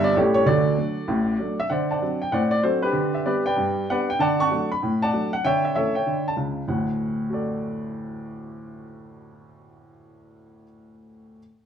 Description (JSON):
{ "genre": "jazz, stride piano", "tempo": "193 BPM", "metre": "4/4", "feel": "swing 65% on 8ths", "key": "D major", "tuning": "A4 = 444 Hz", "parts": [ { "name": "warm upright piano", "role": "solo", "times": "0.0-11.4 s", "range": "G1 to C#6", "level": "-21 LUFS", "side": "equal", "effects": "none" } ], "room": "wet club reverb, RT60 0.9 s", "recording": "heard from further back in the room", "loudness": "-21 LUFS", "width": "side -8 dB against mid", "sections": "0.0-1.7 A section; 1.7-6.7 B section; 6.7-9.2 C section", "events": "none", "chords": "0.1 A7; 0.5 D; 1.7 D7; 2.9 G/D; 4.2 D; 5.4 A7/D; 6.7 D" }